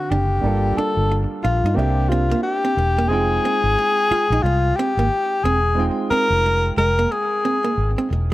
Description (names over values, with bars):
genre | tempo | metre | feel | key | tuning
R&B | 90 BPM | 4/4 | swing 60% on 16ths | F dorian | A4 = 440 Hz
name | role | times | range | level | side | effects
breathy tenor saxophone | melody | 0.0-8.1 s | F4 to Bb4 | -20 LUFS | left 2 dB | tape echo
warm grand piano | accompaniment | 0.0-8.3 s | D3 to G5 | -27 LUFS | right 4 dB | none
archtop guitar, miked and amplified | second line | 0.1-8.3 s | Ab3 to F4 | -26 LUFS | right 3 dB | tape echo
vintage muted fingered electric bass | bass | 0.1-8.3 s | E1 to G2 | -20 LUFS | equal | none
room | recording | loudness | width
light reverb | none | -17 LUFS | side -16 dB against mid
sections
0.0-8.3 A section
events
none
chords
0.4 Gm9; 1.8 C7; 3.1 Fm9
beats
| 0.43 1.10 1.76 2.43 | 3.10 3.77 4.43 5.10 | 5.76 6.43 7.10 7.76